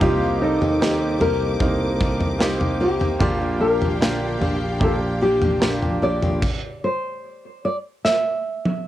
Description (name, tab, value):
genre	pop ballad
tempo	75 BPM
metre	4/4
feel	straight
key	unclear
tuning	A4 = 440 Hz
part	nylon-string guitar	melody	0.0-8.8 s	Eb4 to E5	-22 LUFS	equal	none
part	clear concert grand piano	accompaniment	0.0-6.4 s	Bb2 to Bb4	-25 LUFS	right 2 dB	none
part	warm studio string section	sustained chords	0.0-6.4 s	Bb3 to D6	-33 LUFS	equal	none
part	picked steel-string acoustic guitar	arpeggios	0.0-6.4 s	Bb2 to G4	-29 LUFS	left 4 dB	none
part	sustaining fretless electric bass	bass	0.0-6.4 s	Bb1 to Eb2	-26 LUFS	equal	none
part	modern studio drum kit	drums	0.0-8.8 s	crash cymbal, kick drum, snare drum, toms	-23 LUFS	equal	cassette tape
room	light reverb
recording	home recording on cassette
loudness	-18 LUFS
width	side -13 dB against mid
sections	0.0-8.9 A section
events	stop 6.4-8.9; drum fill 8.0-8.9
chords	0.0 Cm7; 3.2 Gm7/Bb; 6.4 N.C.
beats	| 0.01 0.81 1.61 2.41 | 3.21 4.01 4.82 5.62 | 6.43 7.23 8.04